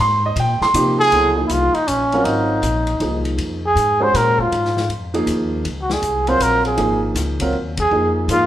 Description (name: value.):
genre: modal jazz.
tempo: 159 BPM.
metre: 3/4.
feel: swing 65% on 8ths.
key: Db major.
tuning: A4 = 442 Hz.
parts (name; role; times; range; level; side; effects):
warm baby grand piano; accompaniment; 0.0-8.5 s; F3 to C6; -20 LUFS; right 2 dB; none.
upright bass; bass; 0.0-8.5 s; Ab1 to C3; -23 LUFS; left 1 dB; none.
vintage drum kit; drums; 0.4-8.4 s; hi-hat, kick drum, ride cymbal, snare drum; -29 LUFS; left 3 dB; none.
breathy trumpet; melody; 1.0-8.5 s; Db4 to C5; -17 LUFS; equal; none.
room: wet large studio reverb, RT60 1.4 s.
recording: band playing live in one room.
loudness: -15 LUFS.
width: side -12 dB against mid.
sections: 0.0-1.1 A section; 1.1-8.5 B section.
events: band accent 7.7.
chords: 0.0 Abmaj9; 1.1 Dbmaj9.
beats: 0.36 0.74 | 1.12 1.50 1.87 | 2.25 2.63 3.01 | 3.38 3.76 4.14 | 4.52 4.90 5.27 | 5.65 6.03 6.41 | 6.79 7.16 7.54 | 7.92 8.29.